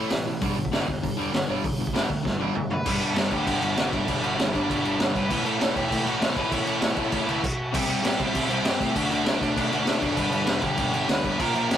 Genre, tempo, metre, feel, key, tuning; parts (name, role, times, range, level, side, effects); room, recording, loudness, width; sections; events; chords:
punk rock; 197 BPM; 4/4; straight; A4 = 441 Hz
crunchy overdriven guitar; riff; 0.0-11.8 s; G2 to D4; -29 LUFS; left 4 dB
distorted electric guitar; riff; 0.0-11.8 s; G2 to D4; -31 LUFS; right 7 dB; overdrive
growling picked electric bass; bass; 0.0-11.8 s; E1 to A2; -35 LUFS; equal; overdrive
raw garage drum kit; drums; 0.1-11.8 s; crash cymbal, hi-hat, kick drum, snare drum, toms; -25 LUFS; equal
smooth overdriven lead guitar; melody; 2.7-11.8 s; D4 to C#6; -32 LUFS; right 1 dB
light reverb; rough rehearsal-room recording, warm saturation; -22 LUFS; side -10 dB against mid
0.0-2.9 A section; 2.9-7.7 B section; 7.7-11.8 C section
drum fill 2.2-2.9; stop 7.4-7.7
0.4 G5; 2.9 G; 5.3 A; 7.7 C; 9.0 D; 10.2 G